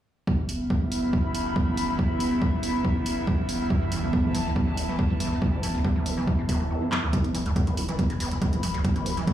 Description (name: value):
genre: driving peak-time techno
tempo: 140 BPM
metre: 4/4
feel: straight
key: unclear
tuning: A4 = 440 Hz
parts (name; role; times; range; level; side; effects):
- metallic inharmonic drone; drone; 0.5-9.3 s; E3; -34 LUFS; right 2 dB; chorus, built-in reverb, phaser, sidechain pumping
- electronic kick drum; drums; 0.3-9.3 s; none; -25 LUFS; equal; studio reverb
- airy breathy pad; texture; 0.5-9.3 s; B3 to B5; -30 LUFS; equal; chorus, sidechain pumping
- warm sub bass; bass; 0.5-9.3 s; E1; -35 LUFS; equal; overdrive, sidechain pumping, low-pass filter
- techno drum kit; drums; 0.5-9.3 s; handclaps, hi-hat; -34 LUFS; right 1 dB; overdrive, studio reverb
- overdriven acid bass; riff; 3.7-9.3 s; E1 to E3; -29 LUFS; equal; analog chorus, sidechain pumping, digital delay
room: light reverb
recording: played on a big sound system in a bare room, large studio reverb, small room ambience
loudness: -23 LUFS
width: side -11 dB against mid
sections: 0.3-7.1 A section; 7.1-9.3 B section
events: drum fill 6.9; filter sweep on acid bass 7.1-9.3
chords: 0.3 E5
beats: | 0.27 0.70 1.13 1.56 | 1.99 2.42 2.85 3.27 | 3.70 4.13 4.56 4.99 | 5.42 5.84 6.27 6.70 | 7.13 7.56 7.99 8.42 | 8.85 9.27